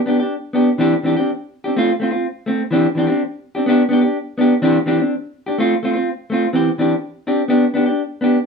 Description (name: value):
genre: highlife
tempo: 125 BPM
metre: 4/4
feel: straight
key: C major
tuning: A4 = 439 Hz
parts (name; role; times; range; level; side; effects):
- semi-hollow electric guitar; solo; 0.1-8.4 s; E3 to G4; -15 LUFS; equal; none
room: wet studio reverb, RT60 0.6 s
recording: band playing live in one room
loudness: -15 LUFS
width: side -5 dB against mid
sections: 0.0-6.5 A section; 6.5-8.5 B section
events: none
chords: 0.0 G; 0.8 Cadd9; 1.7 F; 2.7 Cadd9; 3.7 G; 4.6 Cadd9; 5.6 F; 6.5 Cadd9; 7.5 G